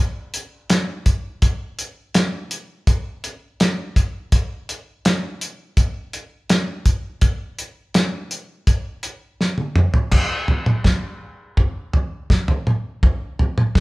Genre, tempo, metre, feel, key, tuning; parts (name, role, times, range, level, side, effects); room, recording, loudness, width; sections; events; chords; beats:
rock; 83 BPM; 4/4; straight
cloth-damped thuddy drum kit; drums; 0.3-13.8 s; crash cymbal, hi-hat, kick drum, snare drum, toms; -17 LUFS; equal
light reverb; band playing live in one room; -18 LUFS; side -22 dB against mid
0.0-10.1 A section; 10.1-13.8 B section
drum fill 9.4-10.1
0.70 | 1.43 2.15 2.88 3.60 | 4.33 5.05 5.78 6.50 | 7.22 7.95 8.67 9.40 | 10.12 10.85 11.58 12.30 | 13.03 13.76